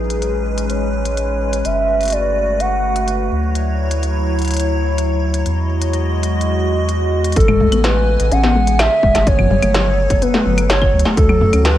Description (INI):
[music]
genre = IDM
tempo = 126 BPM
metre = 4/4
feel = straight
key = A major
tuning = A4 = 440 Hz
[part]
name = warbly nostalgic lead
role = melody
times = 0.0-3.3, 7.4-11.8 s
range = A4 to F#5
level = -18 LUFS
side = right 1 dB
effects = chorus, vintage 12-bit sampler grit, digital delay
[part]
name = icy glass pad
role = sustained chords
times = 0.0-11.8 s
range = C#3 to G#5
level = -22 LUFS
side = equal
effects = chorus, built-in reverb
[part]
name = round analog bass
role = bass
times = 0.0-11.8 s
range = E1 to F#2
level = -18 LUFS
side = equal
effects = tube saturation
[part]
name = industrial drum kit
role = drums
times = 0.1-11.7 s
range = claves, hi-hat, snare drum, toms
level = -21 LUFS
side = equal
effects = studio reverb
[part]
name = electronic kick drum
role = drums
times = 7.4-11.3 s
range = none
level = -17 LUFS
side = equal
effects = studio reverb
[part]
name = warbly dusty pluck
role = arpeggios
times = 7.5-11.7 s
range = F#3 to C#4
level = -20 LUFS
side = left 4 dB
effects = chorus, tape echo
[sound]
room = light reverb, digital ambience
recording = none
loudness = -14 LUFS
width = side -12 dB against mid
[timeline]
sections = 0.0-7.4 A section; 7.4-11.8 B section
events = none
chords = 0.0 Amaj9; 1.6 Gmaj9; 3.3 Dmaj9; 5.5 Emaj9; 7.4 Amaj9; 9.3 Gmaj9; 10.9 Dmaj9